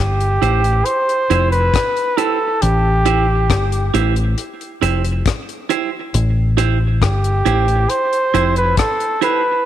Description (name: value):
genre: roots reggae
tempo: 68 BPM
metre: 4/4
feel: straight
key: A minor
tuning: A4 = 440 Hz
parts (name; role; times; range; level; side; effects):
- warm flugelhorn; melody; 0.0-9.7 s; G4 to C5; -17 LUFS; right 1 dB; tape echo
- deep dub fingered electric bass; bass; 0.0-8.7 s; F1 to A1; -16 LUFS; left 1 dB; none
- deep reggae drum kit; drums; 0.2-9.4 s; hi-hat, kick drum, rim click; -21 LUFS; left 4 dB; none
- clean electric guitar; accompaniment; 0.4-9.4 s; E4 to C5; -22 LUFS; right 10 dB; tape echo
room: light reverb, small room ambience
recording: 1960s-style stereo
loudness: -14 LUFS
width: side -11 dB against mid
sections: 0.0-9.7 A section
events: none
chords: 0.0 Am7